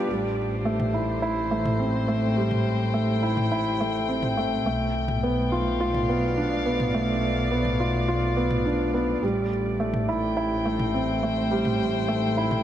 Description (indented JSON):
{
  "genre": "piano and strings electronica",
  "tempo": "105 BPM",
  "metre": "4/4",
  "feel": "straight",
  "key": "A minor",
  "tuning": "A4 = 440 Hz",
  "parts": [
    { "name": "dark string quartet", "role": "sustained chords", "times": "0.0-12.6 s", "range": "A2 to G5", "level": "-29 LUFS", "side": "left 1 dB", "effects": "none" },
    { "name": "felt-muted upright piano", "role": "riff", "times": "0.0-12.6 s", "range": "G3 to G4", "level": "-25 LUFS", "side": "right 1 dB", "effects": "digital delay" },
    { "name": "rich chamber double bass section", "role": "bass", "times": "0.1-12.6 s", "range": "A1 to B1", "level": "-29 LUFS", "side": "equal", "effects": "none" },
    { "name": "electronic toms", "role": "drums", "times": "0.8-12.6 s", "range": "none", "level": "-32 LUFS", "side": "equal", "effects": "none" }
  ],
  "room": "light reverb, small room ambience",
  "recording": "none",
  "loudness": "-22 LUFS",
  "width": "side -11 dB against mid",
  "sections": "0.1-12.6 A section",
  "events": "none",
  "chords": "0.1 Am7; 4.7 Bm7b5; 9.2 Am7",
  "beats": "| 0.09 0.66 1.23 1.80 | 2.37 2.94 3.51 4.08 | 4.66 5.23 5.80 6.37 | 6.94 7.51 8.09 8.66 | 9.23 9.80 10.37 10.94 | 11.51 12.09"
}